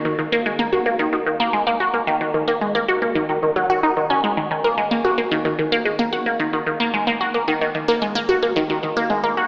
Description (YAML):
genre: ambient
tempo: 111 BPM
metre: 4/4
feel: straight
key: Eb minor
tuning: A4 = 441 Hz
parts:
  - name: resonant blip pluck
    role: solo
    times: 0.0-9.4 s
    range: Eb3 to Gb4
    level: -20 LUFS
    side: equal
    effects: phaser, analog delay
room: wet plate reverb, RT60 3.3 s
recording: echo-heavy mix, AM radio sound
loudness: -20 LUFS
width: mono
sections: 0.0-9.5 A section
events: none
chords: none